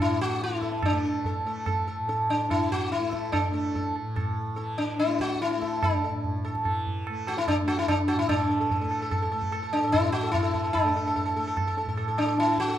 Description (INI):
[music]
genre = indian classical, Hindustani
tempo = 145 BPM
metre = 3/4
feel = straight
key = unclear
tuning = A4 = 439 Hz
[part]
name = sitar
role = melody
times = 0.0-12.8 s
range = D4 to A4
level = -26 LUFS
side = left 1 dB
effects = none
[part]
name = tanpura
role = drone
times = 0.0-12.8 s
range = A2 to A3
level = -35 LUFS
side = equal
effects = none
[part]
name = tabla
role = percussion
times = 0.2-12.8 s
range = none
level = -30 LUFS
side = right 2 dB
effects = none
[sound]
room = wet recital hall reverb, RT60 1.4 s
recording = minimal, uncompressed stereo recording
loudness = -24 LUFS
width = side -11 dB against mid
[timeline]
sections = 0.0-8.3 A section; 8.3-12.8 B section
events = speeding up 0.0-12.8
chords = none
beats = 0.41 | 0.83 1.25 1.67 | 2.09 2.50 2.92 | 3.34 3.75 4.17 | 4.58 5.00 5.41 | 5.83 6.24 6.65 | 7.06 7.47 7.89 | 8.30 8.71 9.12 | 9.53 9.94 10.34 | 10.75 11.16 11.57 | 11.97 12.38